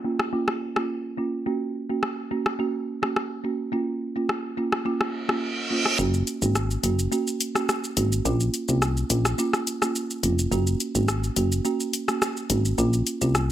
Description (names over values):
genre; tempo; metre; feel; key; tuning
dancehall; 106 BPM; 4/4; straight; unclear; A4 = 439 Hz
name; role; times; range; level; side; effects
folk marimba with soft mallets; accompaniment; 0.0-13.5 s; Bb3 to Gb4; -26 LUFS; right 3 dB; low-pass filter
downlifter and reverse cymbal; sound effects; 5.1-6.0 s; none; -28 LUFS; right 3 dB; none
island pop drum kit; drums; 0.2-13.5 s; hi-hat, rim click, shaker; -26 LUFS; left 1 dB; none
solid FM bass; bass; 6.0-13.5 s; F1 to C2; -24 LUFS; left 1 dB; none
room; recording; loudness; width
little or no reverb; none; -23 LUFS; side -12 dB against mid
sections
0.0-6.0 A section; 6.0-13.5 B section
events
filter sweep on marimba 0.0-6.0; reverse cymbal 5.2-6.0; kick muted 6.0-13.5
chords
0.0 Bbm; 1.5 Gb; 3.7 Bbm; 6.0 Gb; 8.3 Bbm; 10.5 Gb; 12.8 Bbm